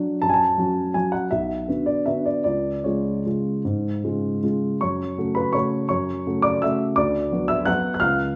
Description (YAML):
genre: classical, piano waltz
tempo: 148-181 BPM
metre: 3/4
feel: rubato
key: F# minor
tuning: A4 = 440 Hz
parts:
  - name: warm upright piano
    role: solo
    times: 0.0-8.4 s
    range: B1 to F#6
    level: -23 LUFS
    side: equal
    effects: none
room: wet large studio reverb, RT60 0.9 s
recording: heard from further back in the room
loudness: -23 LUFS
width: mono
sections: 0.0-4.8 A section; 4.8-8.4 B section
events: none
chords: 0.2 F#m; 1.3 Bm; 2.5 C#; 4.8 F#m; 7.0 Bm/D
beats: | 0.22 0.58 0.95 | 1.31 1.67 2.06 | 2.46 2.85 3.26 | 3.65 4.04 4.43 | 4.81 5.17 5.54 | 5.90 6.26 6.62 | 6.97 7.32 7.67 | 8.02 8.35